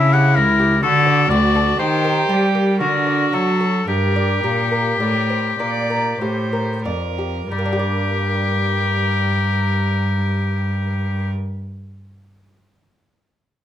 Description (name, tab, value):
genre	classical, baroque-style sonata movement with continuo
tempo	45-65 BPM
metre	3/4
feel	straight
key	G minor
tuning	A4 = 440 Hz
part	clear oboe	melody	0.0-11.3 s	G4 to F#5	-21 LUFS	left 6 dB	none
part	dark violin	second line	0.0-11.3 s	E4 to D5	-24 LUFS	right 4 dB	none
part	lute	accompaniment	0.0-11.6 s	D2 to D5	-25 LUFS	left 1 dB	none
part	rich cello	bass	0.0-11.3 s	C#2 to G3	-20 LUFS	equal	none
room	light reverb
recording	none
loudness	-16 LUFS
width	side -10 dB against mid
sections	0.0-7.5 A section; 7.5-11.5 B section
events	slowing down 0.0-7.5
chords	0.0 C#dim7; 0.8 D; 1.8 Eb; 2.8 D; 3.9 Gm